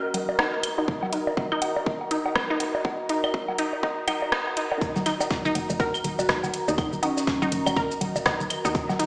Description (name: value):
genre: minimal techno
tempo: 122 BPM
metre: 4/4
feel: swing 60% on 16ths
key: Eb minor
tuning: A4 = 440 Hz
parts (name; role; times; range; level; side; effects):
- warbly tape-like pad; texture; 0.0-9.1 s; Gb4 to Bb5; -31 LUFS; equal; chorus, built-in reverb, sidechain pumping
- house drum kit; drums; 0.1-9.1 s; hi-hat, rim click, shaker; -28 LUFS; equal; none
- congas, woodblock, bongos and claves; percussion; 0.1-9.0 s; none; -30 LUFS; equal; tape echo
- resonant blip pluck; riff; 0.4-9.0 s; Eb4 to Bb4; -29 LUFS; equal; chorus, sidechain pumping, dub echo
- electronic kick drum; drums; 0.9-8.9 s; none; -28 LUFS; equal; none
- breakbeat sampler-style drum kit; drums; 4.8-9.1 s; hi-hat, snare drum; -37 LUFS; equal; high-pass filter on snare, sidechain pumping on hats, high-pass filter on hats
- woody FM bass; bass; 5.0-9.0 s; Eb1 to Eb2; -31 LUFS; equal; tube saturation, sidechain pumping
- vibraphone with medium mallets; melody; 6.2-7.7 s; Db4 to Gb4; -30 LUFS; equal; tape echo
room: wet plate reverb, RT60 2.2 s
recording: played on a big sound system in a bare room, stone room reverb, high-pass filter, small speaker sound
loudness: -23 LUFS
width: side -27 dB against mid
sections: 0.0-4.8 A section; 4.8-9.1 B section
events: build-up 0.0-4.8; filter sweep on synth pluck 0.0-4.8; drop 4.8-9.1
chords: 0.0 Ebm